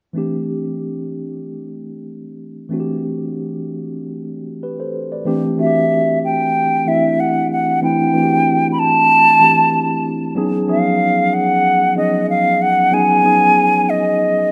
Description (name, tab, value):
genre	R&B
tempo	94 BPM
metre	4/4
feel	swing 53% on 16ths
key	D mixolydian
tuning	A4 = 441 Hz
part	mellow tine electric piano	accompaniment	0.1-14.5 s	E3 to D5	-21 LUFS	equal	none
part	hollow concert flute	melody	5.6-14.5 s	D#5 to B5	-16 LUFS	equal	none
room	moderate lush hall reverb, RT60 2.6 s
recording	rough home demo mix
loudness	-15 LUFS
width	mono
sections	0.2-5.3 A section; 5.3-14.5 B section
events	none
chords	0.2 D9sus4; 10.4 C#9sus4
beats	| 0.15 0.79 1.43 2.07 | 2.71 3.34 3.98 4.62 | 5.26 5.90 6.54 7.17 | 7.81 8.45 9.09 9.73 | 10.37 11.00 11.64 12.28 | 12.92 13.56 14.19